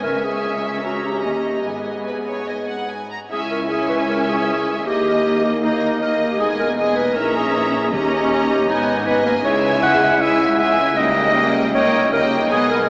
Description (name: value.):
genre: classical.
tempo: 156 BPM.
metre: 4/4.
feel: straight.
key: unclear.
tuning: A4 = 440 Hz.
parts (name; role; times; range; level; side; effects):
clear symphonic violin section; melody; 0.0-12.9 s; D#5 to A#5; -29 LUFS; equal; none.
mellow clarinet; second line; 0.0-12.9 s; D#4 to F#5; -23 LUFS; equal; none.
rich symphonic violin section; second line; 0.0-12.9 s; B4 to A#5; -28 LUFS; equal; none.
rich studio viola section; accompaniment; 0.0-12.9 s; G#3 to C#4; -28 LUFS; equal; none.
clear symphonic double bass section; bass; 0.0-12.9 s; E1 to D#2; -33 LUFS; equal; none.
rich studio cello section; bass; 0.0-12.9 s; C#2 to C#3; -31 LUFS; equal; none.
warm French horn section; sustained chords; 3.3-12.9 s; G3 to E4; -25 LUFS; equal; none.
timpani; percussion; 7.9-8.5 s; D#3; -38 LUFS; equal; none.
room: wet cathedral reverb, RT60 6.1 s.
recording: in a vast, echoing space, small speaker sound.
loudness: -19 LUFS.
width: mono.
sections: 0.0-3.3 A section; 3.3-12.9 B section.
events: none.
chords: 0.0 C#m; 1.2 D#7; 1.7 G#m; 3.3 C#m; 4.9 D#; 6.4 Emaj7; 7.2 A#dim; 7.9 D#7; 8.7 G#m; 9.5 C#m; 11.0 D#7/C#.